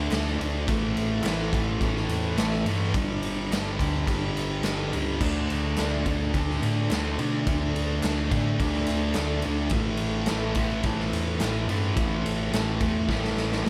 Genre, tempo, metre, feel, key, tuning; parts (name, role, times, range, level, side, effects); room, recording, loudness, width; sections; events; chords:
garage rock duo or trio; 106 BPM; 4/4; straight; A4 = 440 Hz
thick fuzz guitar; riff; 0.0-13.7 s; G2 to D4; -29 LUFS; equal; distortion
overdriven fingered electric bass; bass; 0.0-13.7 s; G1 to B2; -33 LUFS; equal
raw garage drum kit; drums; 0.1-13.7 s; crash cymbal, kick drum, ride cymbal, snare drum; -31 LUFS; equal
group handclap; percussion; 0.1-13.5 s; -43 LUFS; equal
light reverb; band playing live in one room; -26 LUFS; mono
0.0-13.7 A section
drum fill 13.1-13.7
0.0 D5; 0.7 A5; 3.0 G5; 5.2 D5; 9.7 A5